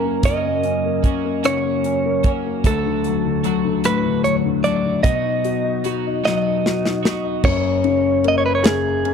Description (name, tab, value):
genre	six-eight pop ballad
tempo	50 BPM (dotted quarters)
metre	6/8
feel	straight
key	F# major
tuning	A4 = 440 Hz
part	direct-recorded clean electric guitar	melody	0.0-9.1 s	G#4 to D#5	-21 LUFS	right 3 dB	spring reverb, slapback echo
part	warm grand piano	accompaniment	0.0-9.1 s	F#1 to F#4	-21 LUFS	left 10 dB	none
part	twelve-string electric guitar	arpeggios	0.0-7.9 s	F#2 to F#4	-26 LUFS	right 16 dB	wide subtle chorus
part	modern studio drum kit	drums	0.2-9.1 s	crash cymbal, hi-hat, kick drum, ride cymbal, rim click, snare drum	-19 LUFS	right 1 dB	none
room	light reverb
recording	dry, close 1970s-style studio recording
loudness	-17 LUFS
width	side -6 dB against mid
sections	0.0-7.4 A section; 7.4-9.1 B section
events	drum fill 6.2-7.4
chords	0.0 F#; 2.6 D; 5.0 B; 7.4 F#